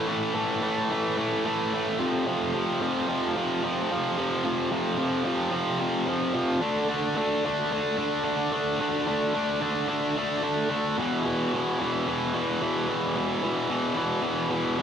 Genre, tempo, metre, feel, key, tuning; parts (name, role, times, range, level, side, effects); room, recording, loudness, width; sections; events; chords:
metal; 110 BPM; 4/4; straight; A4 = 440 Hz
tight distorted guitar; solo; 0.0-14.8 s; E2 to D4; -24 LUFS; equal; distortion
digital ambience; dry, close 1970s-style studio recording; -24 LUFS; side -8 dB against mid
0.0-14.8 A section
0.0 A5; 2.0 F5; 6.6 D5; 11.0 E5